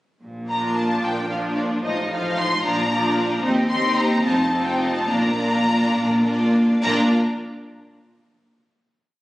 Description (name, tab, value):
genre	quick classical-period movement for string orchestra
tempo	68-76 BPM (dotted quarters)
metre	6/8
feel	rubato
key	Bb major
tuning	A4 = 439 Hz
part	clear studio double bass section	bass	0.2-7.1 s	F1 to Eb2	-29 LUFS	equal	none
part	warm symphonic cello section	bass	0.2-7.1 s	Eb2 to Bb2	-27 LUFS	equal	none
part	dark symphonic violin section	melody	0.5-7.1 s	D5 to C6	-24 LUFS	left 2 dB	none
part	rich symphonic violin section	second line	0.5-7.1 s	F4 to D5	-28 LUFS	equal	none
part	clear symphonic viola section	accompaniment	0.5-7.1 s	F3 to Eb4	-22 LUFS	equal	none
room	moderate scoring stage reverb, RT60 1.5 s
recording	recorded on a phone in the room, studio reverb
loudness	-18 LUFS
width	side -16 dB against mid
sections	0.2-6.8 A section; 6.8-8.5 final chord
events	slowing down 2.6-6.8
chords	0.2 Bb; 1.8 F7/A; 2.6 Bb; 3.4 Cm/Eb; 4.2 F7; 5.1 Bb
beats	| 0.22 1.03 | 1.84 2.64 | 3.44 4.25 | 5.08 5.95 | 6.82